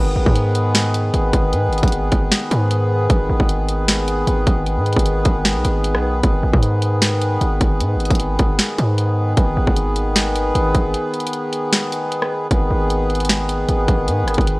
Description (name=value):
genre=hip hop, trap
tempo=153 BPM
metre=4/4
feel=half-time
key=G# minor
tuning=A4 = 440 Hz
part: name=hand-pumped harmonium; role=sustained chords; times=0.0-14.6 s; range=D#3 to B4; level=-21 LUFS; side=equal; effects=none
part: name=distorted 808-style bass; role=bass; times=0.0-14.6 s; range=G#1 to G#2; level=-19 LUFS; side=equal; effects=distortion
part: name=trap drum kit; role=drums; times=0.3-14.6 s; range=hi-hat, kick drum, rim click, snare drum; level=-18 LUFS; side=equal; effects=none
room=light reverb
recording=worn, warbling old tape, cassette tape, warbly pitch drift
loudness=-15 LUFS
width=side -23 dB against mid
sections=0.0-12.5 A section; 12.5-14.6 B section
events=break 10.9-12.5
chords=0.0 G#m